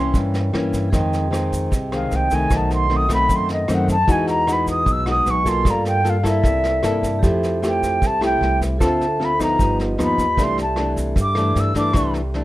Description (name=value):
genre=bossa nova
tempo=152 BPM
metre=4/4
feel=straight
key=unclear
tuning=A4 = 440 Hz
part: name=silver concert flute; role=melody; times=0.0-12.1 s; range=D#5 to E6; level=-20 LUFS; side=equal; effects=none
part: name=nylon-string guitar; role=accompaniment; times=0.0-12.4 s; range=F2 to A4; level=-22 LUFS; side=left 2 dB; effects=none
part: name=vibraphone with medium hard mallets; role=accompaniment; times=0.0-12.4 s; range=F4 to A5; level=-28 LUFS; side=right 3 dB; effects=none
part: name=upright bass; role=bass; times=0.0-12.4 s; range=G1 to G2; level=-23 LUFS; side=equal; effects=none
part: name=vintage brush drum kit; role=drums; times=0.1-12.4 s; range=kick drum, rim click, snare drum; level=-24 LUFS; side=equal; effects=none
part: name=tube shaker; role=percussion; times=0.1-12.3 s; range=none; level=-41 LUFS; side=right 2 dB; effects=none
room=little or no reverb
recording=rough home demo mix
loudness=-17 LUFS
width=side -16 dB against mid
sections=0.0-12.4 A section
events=flute solo 0.0-12.4; vibraphone fill 6.6-7.2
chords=0.0 C7b9; 0.9 Fm7; 2.5 B7b9; 4.1 Emaj9; 5.7 Gm9; 6.4 C13; 7.2 Fmaj9; 8.8 Dm7; 9.6 Gaug7; 10.4 C69